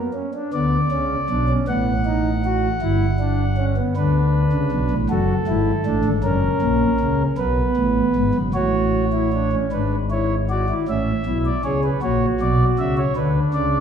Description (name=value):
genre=classical, baroque-style 3-part fugue for pipe organ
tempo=52 BPM (dotted quarters)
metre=6/8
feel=straight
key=B minor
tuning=A4 = 440 Hz
part: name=pipe organ, principal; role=solo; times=0.0-13.8 s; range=F#1 to F#5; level=-18 LUFS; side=equal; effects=none
room=wet recital hall reverb, RT60 1.5 s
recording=heard from further back in the room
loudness=-18 LUFS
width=side -8 dB against mid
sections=0.5-9.7 A section; 9.7-13.8 B section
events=none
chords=0.0 N.C.; 1.7 B7/A; 2.8 Em/G; 4.0 Bm/D; 5.1 F#m; 6.2 F#; 7.4 B5; 8.5 F#m/A; 9.7 E7/G#; 10.9 A; 12.0 F#7/A#; 13.2 Bm